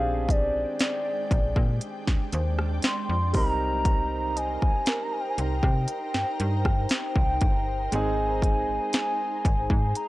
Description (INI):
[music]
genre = contemporary R&B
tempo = 59 BPM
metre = 4/4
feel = straight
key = unclear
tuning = A4 = 440 Hz
[part]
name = hollow clarinet-like synth lead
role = melody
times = 0.0-10.1 s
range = D5 to C6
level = -29 LUFS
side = equal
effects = chorus
[part]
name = clear concert grand piano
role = accompaniment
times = 0.0-10.1 s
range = G3 to Bb4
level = -34 LUFS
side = right 2 dB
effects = none
[part]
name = ethereal airy pad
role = sustained chords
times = 0.0-10.1 s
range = Ab3 to Bb5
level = -36 LUFS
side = right 1 dB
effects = ensemble chorus, built-in reverb, sidechain pumping
[part]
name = slap-like FM bass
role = bass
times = 0.0-9.9 s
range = G1 to C3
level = -28 LUFS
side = equal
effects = none
[part]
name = soft round pluck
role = texture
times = 0.0-7.7 s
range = Bb4 to Eb5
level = -39 LUFS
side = right 1 dB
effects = chorus, analog delay
[part]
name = trap drum kit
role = drums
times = 0.3-10.1 s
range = hi-hat, kick drum, rim click, snare drum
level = -25 LUFS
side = equal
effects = none
[sound]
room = digital ambience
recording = dry, gritty hardware recording, cassette tape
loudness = -23 LUFS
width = side -18 dB against mid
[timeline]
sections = 0.0-10.1 A section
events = none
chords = 0.0 Bb13; 3.3 Cm7; 7.9 Ab